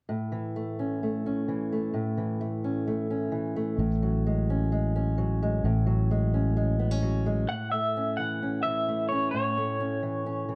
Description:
folk; 130 BPM; 4/4; straight; A major; A4 = 440 Hz
fingerpicked old ladder-braced acoustic guitar; accompaniment; 0.1-10.6 s; A2 to C#4; -31 LUFS; equal
fingered electric bass; bass; 3.8-7.5 s; A1; -28 LUFS; equal
electric guitar through a small old amp; melody; 7.5-10.6 s; C#5 to F#5; -31 LUFS; equal; tremolo
little or no reverb; dark, warm production; -28 LUFS; mono
0.1-7.5 A section; 7.5-10.6 B section
0.1 A; 3.8 F#madd9/A; 7.5 A

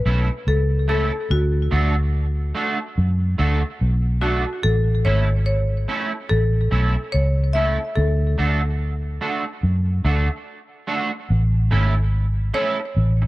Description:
roots reggae; 72 BPM; 4/4; swing 59% on 16ths; A major; A4 = 436 Hz
marimba with hard mallets; melody; 0.0-13.3 s; F#4 to E5; -26 LUFS; left 2 dB; tape echo
vintage muted fingered electric bass; bass; 0.0-13.3 s; G#1 to F#2; -18 LUFS; equal
electric guitar at the edge of break-up; accompaniment; 0.1-13.3 s; A3 to A4; -26 LUFS; right 3 dB; ensemble chorus, tape echo
small room ambience; dry, close 1970s-style studio recording; -18 LUFS; side -18 dB against mid
0.0-11.3 A section; 11.3-13.3 B section
break 10.5-11.3
0.0 A; 1.3 D; 4.6 A; 8.0 D; 11.3 A

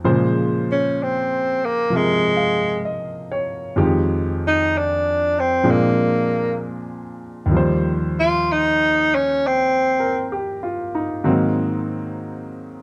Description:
jazz; 64 BPM; 4/4; swing 68% on 8ths; Bb dorian; A4 = 440 Hz
clear grand piano; accompaniment; 0.0-12.8 s; Eb2 to F5; -23 LUFS; equal
clear tenor saxophone; melody; 0.7-10.4 s; Ab3 to F4; -20 LUFS; equal
light reverb; close, detailed microphones; -20 LUFS; mono
0.0-12.8 A section
tenor saxophone solo 0.0-12.8
0.0 Bbm9; 3.8 Fm7; 5.6 Bb9; 7.5 Eb6; 11.3 Ab7

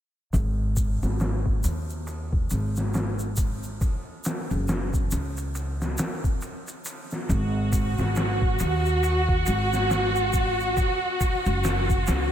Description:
trip hop; 69 BPM; 4/4; swing 59% on 16ths; A4 = 438 Hz
upright bass; bass; 0.3-12.3 s; F#1 to D#2; -26 LUFS; equal
trip hop sampler-style drum kit; drums; 0.3-12.3 s; hi-hat, kick drum, ride cymbal, snare drum; -28 LUFS; equal; low-pass filter on cymbals, low-pass filter on kick, low-pass filter on snare, low-pass filter on hats, low-pass filter on room
egg shaker; percussion; 0.3-12.3 s; -40 LUFS; equal
warm studio violin section; sustained chords; 7.3-12.3 s; F#4; -25 LUFS; right 1 dB
moderate huge ambient reverb, RT60 6.3 s; dreamy mix soaked in reverb; -23 LUFS; side -10 dB against mid
0.3-12.3 A section
0.3 G#5; 3.8 F#5; 7.3 G#5; 10.8 F#5

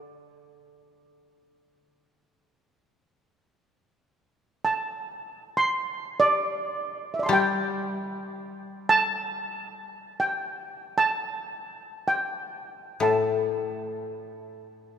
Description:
japanese traditional, Japanese chamber music; free time; A4 = 440 Hz
steel pan; melody; 0.0-15.0 s; D5 to C6; -25 LUFS; right 2 dB
koto; accompaniment; 0.0-1.7, 7.3-15.0 s; A2 to G3; -27 LUFS; left 5 dB
wet church reverb, RT60 3.7 s; -24 LUFS; side -8 dB against mid
0.0-3.1 A section; 3.1-15.0 A section

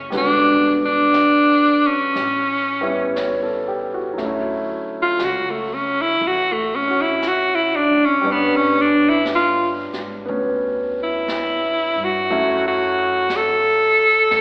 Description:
jazz ballad; 59 BPM; 4/4; swing 66% on 8ths; D major; A4 = 440 Hz
clear concert grand piano; accompaniment; 0.0-14.4 s; C#3 to C#5; -26 LUFS; equal
upright bass; bass; 0.0-14.4 s; E1 to A2; -39 LUFS; equal
jazz brush drum kit; drums; 0.1-14.4 s; brushed snare drum, hi-hat, snare drum; -37 LUFS; equal
edgy alto saxophone; melody; 0.2-14.4 s; A3 to A4; -19 LUFS; equal; slapback echo
moderate plate reverb, RT60 2.2 s; live gig heard through the venue's PA, recital hall reverb, AM radio sound; -19 LUFS; mono
0.0-4.2 A section; 4.2-14.4 B section
alto saxophone solo 4.2-14.4
0.1 Em7; 2.2 A7; 4.2 Dmaj7; 8.2 G; 12.3 F#m7

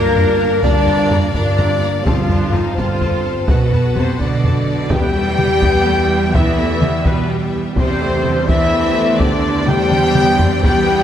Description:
cinematic, epic orchestral film score; 84 BPM (dotted quarters); 6/8; straight; E minor from 4.9 s; A4 = 438 Hz
clear symphonic violin section; second line; 0.0-11.0 s; F4 to C6; -29 LUFS; left 3 dB
clear symphonic viola section; accompaniment; 0.0-11.0 s; G3 to F#4; -26 LUFS; right 1 dB
clear trombone section; sustained chords; 0.0-11.0 s; F3 to D4; -27 LUFS; right 3 dB
rich symphonic string section; sustained chords; 0.0-11.0 s; B3 to F#5; -26 LUFS; left 1 dB
warm French horn section; sustained chords; 0.0-11.0 s; B3 to D5; -20 LUFS; left 4 dB
rich symphonic cello section; bass; 0.0-11.0 s; G2 to G3; -21 LUFS; right 3 dB
warm symphonic double bass section; bass; 0.0-11.0 s; G1 to E2; -21 LUFS; right 2 dB
clear symphonic violin section; melody; 0.2-11.0 s; B4 to Bb5; -27 LUFS; left 5 dB
taiko ensemble; drums; 0.2-11.0 s; -18 LUFS; equal
mellow flute section; second line; 4.0-11.0 s; B4 to G5; -25 LUFS; left 2 dB
bright trumpet section; stabs; 4.0-11.0 s; B4 to G5; -23 LUFS; equal
timpani; percussion; 4.9-5.6 s; E2; -30 LUFS; left 2 dB
moderate scoring stage reverb, RT60 1.6 s; -13 LUFS; side -10 dB against mid
0.0-4.9 A section; 4.9-11.0 B section
drum fill 9.9-10.6
0.0 Bb/G; 2.1 F/G; 3.5 B5; 4.9 Em; 7.8 Csus2/E

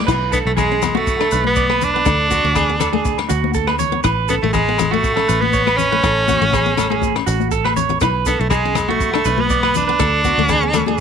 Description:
highlife guitar band; 121 BPM; 4/4; straight; A4 = 442 Hz
picked steel-string acoustic guitar; accompaniment; 0.0-11.0 s; A3 to E4; -24 LUFS; left 14 dB
electric guitar at the edge of break-up; arpeggios; 0.0-11.0 s; F#4 to D5; -20 LUFS; right 13 dB; slapback echo
fingered electric bass; bass; 0.0-11.0 s; A1 to D2; -22 LUFS; equal
vintage drum kit; drums; 0.1-10.9 s; crash cymbal, hi-hat, kick drum, rim click; -24 LUFS; equal
agogo bells; percussion; 0.1-10.9 s; -27 LUFS; left 13 dB
maracas; percussion; 0.1-11.0 s; -33 LUFS; left 20 dB
edgy tenor saxophone; melody; 0.3-11.0 s; G#3 to D4; -18 LUFS; equal
congas; percussion; 0.6-11.0 s; -24 LUFS; left 13 dB
little or no reverb; 1960s-style stereo with parts hard left and right; -14 LUFS; side -7 dB against mid
0.1-11.0 A section
drum fill 7.5-8.0
0.1 Bm; 2.1 D; 4.1 A6; 8.0 Bm; 10.0 D

